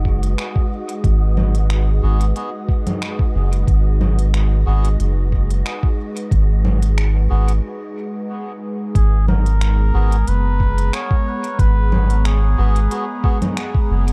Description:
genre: ambient dub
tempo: 91 BPM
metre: 4/4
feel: swing 54% on 16ths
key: G# minor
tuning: A4 = 439 Hz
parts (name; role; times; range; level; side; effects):
- airy breathy pad; sustained chords; 0.0-14.1 s; G#3 to A#5; -30 LUFS; equal; chorus
- soft dub sub bass; bass; 0.0-14.1 s; F#1 to G#1; -18 LUFS; equal; tube saturation
- wind-like tuned noise texture; texture; 0.0-7.7 s; F#4 to D#5; -37 LUFS; equal; built-in reverb
- electronic kick drum; drums; 0.1-13.9 s; none; -19 LUFS; equal; none
- organic electronic drum kit; drums; 0.2-14.1 s; congas, finger snaps, hi-hat; -28 LUFS; equal; overdrive, dub echo
- melodica; stabs; 2.0-13.4 s; B3 to G#4; -35 LUFS; equal; dub echo
- trumpet with cup mute; melody; 9.0-13.6 s; G#4 to C#5; -29 LUFS; equal; dub echo
room: little or no reverb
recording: dark, warm production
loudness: -18 LUFS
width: mono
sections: 0.0-9.0 A section; 9.0-14.1 B section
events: break 7.6-9.0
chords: 0.0 G#m7

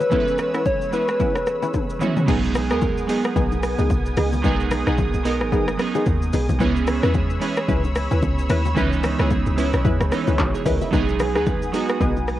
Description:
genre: amapiano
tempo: 111 BPM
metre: 4/4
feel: swing 58% on 16ths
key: B major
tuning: A4 = 436 Hz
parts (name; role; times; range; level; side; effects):
- soft struck synth lead; melody; 0.0-2.0 s; B4 to C#5; -23 LUFS; left 1 dB; chorus, cassette tape, analog delay
- glassy digital keys; accompaniment; 0.0-12.4 s; D#3 to E5; -25 LUFS; right 6 dB; chorus, cassette tape
- lush unison pad; sustained chords; 0.0-12.4 s; B3 to E6; -30 LUFS; left 1 dB; chorus, phaser, cassette tape
- deep house drum kit; drums; 0.0-12.4 s; crash cymbal, handclaps, hi-hat, kick drum, rim click, shaker, toms; -24 LUFS; equal; overdrive, cassette tape
- bongos and congas; percussion; 0.0-12.3 s; none; -30 LUFS; left 8 dB; none
- punchy chord stab; stabs; 0.1-12.1 s; B3 to B4; -27 LUFS; left 1 dB; chorus, phaser, cassette tape, analog delay
- deep log drum bass; bass; 2.3-12.4 s; G#1 to E2; -23 LUFS; equal; none
room: light reverb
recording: home recording on cassette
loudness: -18 LUFS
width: side -13 dB against mid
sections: 0.0-2.3 A section; 2.3-12.4 B section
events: drum fill 1.7-2.3; drop 2.3-12.4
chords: 0.0 C#m7; 2.3 B6; 6.6 C#m7; 10.9 B6

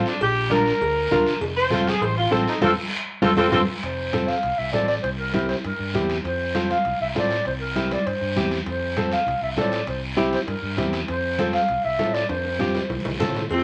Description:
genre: latin, cumbia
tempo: 199 BPM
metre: 4/4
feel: straight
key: F major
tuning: A4 = 440 Hz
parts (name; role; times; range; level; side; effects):
- mellow saxophone section; melody; 0.0-3.6, 13.5-13.6 s; A3 to C5; -24 LUFS; equal; none
- flamenco guitar; accompaniment; 0.0-13.4 s; C4 to Bb4; -26 LUFS; equal; none
- fingered electric bass; bass; 0.0-13.6 s; F1 to A2; -32 LUFS; equal; none
- guiro; percussion; 0.1-13.6 s; none; -35 LUFS; equal; none
- cowbell and timbales; percussion; 0.2-13.6 s; none; -36 LUFS; equal; none
- congas; percussion; 0.5-13.5 s; none; -32 LUFS; equal; none
- breathy clarinet; second line; 3.8-13.6 s; F4 to F5; -28 LUFS; equal; none
room: moderate club reverb, RT60 0.7 s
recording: none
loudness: -23 LUFS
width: mono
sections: 0.0-3.8 A section; 3.8-13.5 B section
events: saxophone section solo 0.0-3.8; band accent 2.6-3.8; drum fill 3.4-3.8, 12.3-13.5; clarinet solo 3.8-13.5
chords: 0.2 Bb; 1.4 F; 5.0 C7; 6.2 F; 7.5 C7; 8.7 F; 9.9 C7; 11.1 F

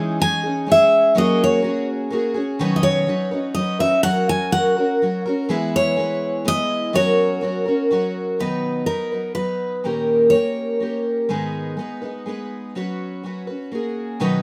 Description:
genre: folk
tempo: 124 BPM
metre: 3/4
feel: straight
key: B major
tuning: A4 = 440 Hz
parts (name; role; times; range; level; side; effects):
- picked twelve-string acoustic guitar; accompaniment; 0.0-14.4 s; G#2 to B4; -23 LUFS; equal; none
- picked steel-string acoustic guitar; melody; 0.2-11.0 s; A#4 to G#5; -22 LUFS; equal; none
room: moderate studio reverb, RT60 0.5 s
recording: none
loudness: -20 LUFS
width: mono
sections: 0.0-8.4 A section; 8.4-14.2 B section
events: none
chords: 0.0 C#madd9/E; 1.2 F#add9; 2.6 Badd9; 4.0 F#; 5.5 E; 6.9 F#; 8.4 B; 9.8 D#7/A#; 11.3 G#m; 12.8 F#sus4; 13.7 F#add9

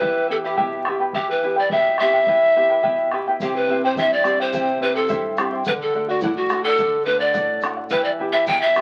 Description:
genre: andean folk, Andean ensemble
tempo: 106 BPM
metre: 2/4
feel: straight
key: E minor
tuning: A4 = 441 Hz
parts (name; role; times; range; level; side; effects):
- breathy pan flute; melody; 0.0-8.8 s; E4 to G5; -21 LUFS; equal; none
- charango; accompaniment; 0.0-8.8 s; E4 to G5; -27 LUFS; equal; none
- flamenco guitar; accompaniment; 0.0-8.8 s; G2 to G4; -31 LUFS; equal; none
- bombo; percussion; 0.0-8.8 s; none; -31 LUFS; equal; none
- egg shaker; percussion; 3.4-8.8 s; none; -48 LUFS; equal; none
room: moderate club reverb, RT60 0.8 s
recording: very old 78 rpm record, vinyl crackle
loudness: -20 LUFS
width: mono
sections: 0.0-3.4 A section; 3.4-8.8 A section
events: none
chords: 0.0 Em; 3.4 C; 5.7 D; 7.9 Em

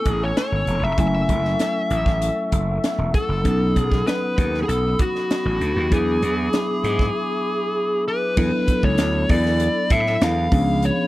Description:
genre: polished 1980s jazz-funk pop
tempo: 97 BPM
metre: 4/4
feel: straight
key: unclear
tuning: A4 = 440 Hz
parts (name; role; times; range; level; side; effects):
- fuzz lead guitar; melody; 0.0-11.1 s; F#4 to F5; -23 LUFS; left 2 dB; distortion
- tine electric piano; accompaniment; 0.0-11.1 s; E#3 to G#5; -26 LUFS; equal; analog chorus
- mellow large flute ensemble; sustained chords; 0.0-11.1 s; E4 to E6; -32 LUFS; right 2 dB; none
- gritty slap bass; bass; 0.1-10.9 s; E1 to A2; -22 LUFS; equal; overdrive
- crisp fusion drum kit; drums; 0.1-11.0 s; crash cymbal, hi-hat, kick drum, snare drum; -23 LUFS; equal; none
room: little or no reverb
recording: none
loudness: -18 LUFS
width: side -16 dB against mid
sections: 0.0-8.4 A section; 8.4-11.1 B section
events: break 7.1-8.4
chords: 0.0 Amaj7; 1.0 F#m7; 3.5 B7; 5.9 E7; 8.4 E7sus4; 10.5 C#7b9

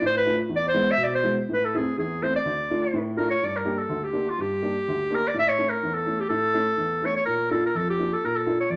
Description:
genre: klezmer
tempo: 124 BPM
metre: 2/4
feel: straight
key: D dorian sharp4, G dorian sharp4 from 3.4 s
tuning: A4 = 440 Hz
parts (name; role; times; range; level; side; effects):
- warm clarinet; melody; 0.0-8.8 s; F4 to E5; -26 LUFS; equal; none
- dark upright piano; accompaniment; 0.0-8.8 s; D2 to G4; -30 LUFS; equal; none
room: wet large studio reverb, RT60 0.9 s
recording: none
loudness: -25 LUFS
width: mono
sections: 0.0-3.4 A section; 3.4-8.8 B section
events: none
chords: 0.0 Dm; 0.5 E; 1.5 Am; 2.4 Dm; 3.4 Gm; 5.3 A; 7.3 Bb

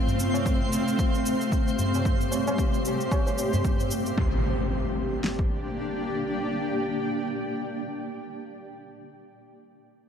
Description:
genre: organic downtempo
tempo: 113 BPM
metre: 4/4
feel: swing 57% on 16ths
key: G minor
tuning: A4 = 440 Hz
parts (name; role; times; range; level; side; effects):
- granular cloud pad; sustained chords; 0.0-8.6 s; A3 to G5; -28 LUFS; left 1 dB; built-in reverb, sidechain pumping
- twinkling granular texture; texture; 0.0-4.2 s; C5; -36 LUFS; right 2 dB; built-in reverb
- shaker; drums; 0.1-4.2 s; none; -38 LUFS; equal; overdrive
- tabla; percussion; 0.1-4.0 s; none; -31 LUFS; equal; analog delay
- deep house drum kit; drums; 0.5-5.5 s; kick drum, snare drum; -26 LUFS; equal; overdrive
- impact; sound effects; 4.2-8.3 s; none; -30 LUFS; equal; none
room: moderate echo chamber reverb, RT60 2.1 s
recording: echo-heavy mix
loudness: -24 LUFS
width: side -8 dB against mid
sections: 0.0-4.2 A section; 4.2-8.4 B section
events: none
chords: 0.0 F; 4.2 Gm

